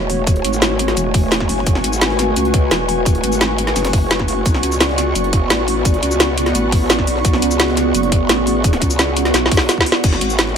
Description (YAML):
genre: dark technical drum and bass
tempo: 172 BPM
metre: 4/4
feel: straight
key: F# minor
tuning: A4 = 438 Hz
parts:
  - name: dark analog pad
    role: sustained chords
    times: 0.0-10.6 s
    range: A3 to D5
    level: -22 LUFS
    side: equal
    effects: chorus, sidechain pumping
  - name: growl bass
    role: bass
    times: 0.0-10.6 s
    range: E1 to C#2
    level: -20 LUFS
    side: equal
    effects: chorus, tube saturation
  - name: ethereal airy pad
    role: texture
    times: 0.0-10.6 s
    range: B3 to C#6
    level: -21 LUFS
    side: right 1 dB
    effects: ensemble chorus, built-in reverb, sidechain pumping
  - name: breakbeat sampler-style drum kit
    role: drums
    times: 0.1-10.6 s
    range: hi-hat, snare drum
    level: -29 LUFS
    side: equal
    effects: none
  - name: drum and bass drum kit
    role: drums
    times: 0.1-10.5 s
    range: cabasa, crash cymbal, hi-hat, snare drum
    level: -18 LUFS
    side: equal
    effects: none
  - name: electronic kick drum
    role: drums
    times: 0.3-10.1 s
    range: none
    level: -16 LUFS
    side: equal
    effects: none
room: moderate digital room reverb, RT60 1.4 s, digital ambience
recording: none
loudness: -13 LUFS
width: side -7 dB against mid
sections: 0.0-10.0 A section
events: drop 0.0-10.0; drum fill 9.3-10.0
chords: 0.0 F#m; 4.5 Bm; 10.0 F#m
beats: | 0.27 0.62 0.97 1.32 | 1.67 2.02 2.36 2.71 | 3.06 3.41 3.76 4.11 | 4.46 4.81 5.16 5.50 | 5.85 6.20 6.55 6.90 | 7.25 7.60 7.95 8.29 | 8.64 8.99 9.34 9.69 | 10.04 10.39